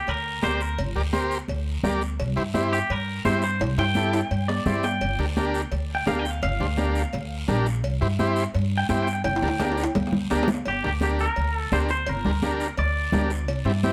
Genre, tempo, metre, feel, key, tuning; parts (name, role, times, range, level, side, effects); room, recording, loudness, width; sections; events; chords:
latin, cumbia; 170 BPM; 4/4; straight; G dorian; A4 = 440 Hz
twangy electric guitar; melody; 0.0-13.3 s; G4 to G5; -31 LUFS; equal; spring reverb, tape echo
upright bass; bass; 0.1-13.9 s; G1 to G2; -29 LUFS; equal
congas; percussion; 0.1-13.9 s; -31 LUFS; equal
cowbell and timbales; percussion; 0.1-13.7 s; -33 LUFS; equal
guiro; percussion; 0.1-13.9 s; -43 LUFS; equal
overdriven combo organ; accompaniment; 0.4-13.9 s; C4 to D5; -29 LUFS; equal
light reverb; -25 LUFS; mono
0.0-10.7 A section; 10.7-13.9 B section
clean electric guitar solo 0.0-10.7; drum fill 3.6-5.0, 9.2-10.7
0.0 Gm; 2.2 C; 5.0 Gm7; 7.8 C; 9.2 Gm